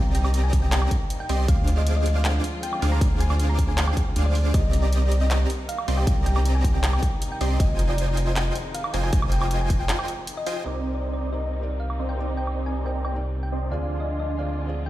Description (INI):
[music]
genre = future bass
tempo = 157 BPM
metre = 4/4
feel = half-time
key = C minor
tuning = A4 = 440 Hz
[part]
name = muted studio string section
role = sustained chords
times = 0.0-14.9 s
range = C3 to F4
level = -37 LUFS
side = left 2 dB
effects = sidechain pumping
[part]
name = dense compressed supersaw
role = riff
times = 0.0-14.6 s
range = C4 to D6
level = -30 LUFS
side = right 1 dB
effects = sidechain pumping, low-pass filter
[part]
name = saturated sub bass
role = bass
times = 0.0-14.9 s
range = F1 to D2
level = -23 LUFS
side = equal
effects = tube saturation, sidechain pumping
[part]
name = thumb-piano-like synth pluck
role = melody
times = 0.1-14.9 s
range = D5 to Bb5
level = -33 LUFS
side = left 1 dB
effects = chorus, sidechain pumping, tape echo
[part]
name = big-room dance drum kit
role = drums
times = 0.1-13.1 s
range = crash cymbal, handclaps, hi-hat, woodblock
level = -31 LUFS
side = right 1 dB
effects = low-pass filter on hats, small room ambience, low-pass filter on snare, low-pass filter on cymbals, low-pass filter on perc
[part]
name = electronic kick drum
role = drums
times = 0.5-9.8 s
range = none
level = -23 LUFS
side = equal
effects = small room ambience
[part]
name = felt-muted upright piano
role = accompaniment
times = 10.6-14.9 s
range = C3 to D6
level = -34 LUFS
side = right 2 dB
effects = sidechain pumping
[sound]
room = little or no reverb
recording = played on a big sound system in a bare room, stone room reverb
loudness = -21 LUFS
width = side -15 dB against mid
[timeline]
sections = 0.0-10.7 A section; 10.7-14.9 B section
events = drop 0.0-10.7; break 9.9-10.7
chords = 0.0 Cm7; 1.5 Dm7b5; 4.5 Cm7; 7.6 Fm7; 10.7 Cm7; 13.7 Dm7b5